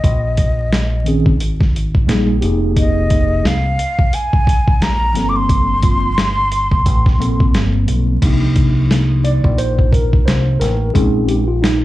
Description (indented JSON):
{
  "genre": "hip hop, jazz-hop",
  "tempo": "88 BPM",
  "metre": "4/4",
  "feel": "swing 58% on 16ths",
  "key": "C minor",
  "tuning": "A4 = 442 Hz",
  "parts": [
    { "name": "breathy hollow jazz flute", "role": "melody", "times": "0.0-7.5 s", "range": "Eb5 to D6", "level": "-19 LUFS", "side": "equal", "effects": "plate reverb, slapback echo" },
    { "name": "deep dub fingered electric bass", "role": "bass", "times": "0.0-11.8 s", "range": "F1 to C2", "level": "-17 LUFS", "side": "equal", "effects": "none" },
    { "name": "boom bap sampler-style drum kit", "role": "drums", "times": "0.0-11.8 s", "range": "crash cymbal, hi-hat, kick drum, snare drum", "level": "-15 LUFS", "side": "equal", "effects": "none" },
    { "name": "mellow tine electric piano", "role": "accompaniment", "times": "1.0-11.8 s", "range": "Eb3 to D5", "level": "-19 LUFS", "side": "equal", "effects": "medium stereo tremolo, plate reverb, slapback echo" }
  ],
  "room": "light reverb",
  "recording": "live gig heard through the venue's PA, club reverb, vinyl crackle, nothing above 10.4 kHz",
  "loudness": "-12 LUFS",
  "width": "side -16 dB against mid",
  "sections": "0.0-8.2 A section; 8.2-11.8 B section",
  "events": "tine electric piano solo 8.2-11.8",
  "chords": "0.0 Bb7sus4; 2.4 Fm11; 5.2 Gm11; 8.2 Cm11; 10.9 Bbm11"
}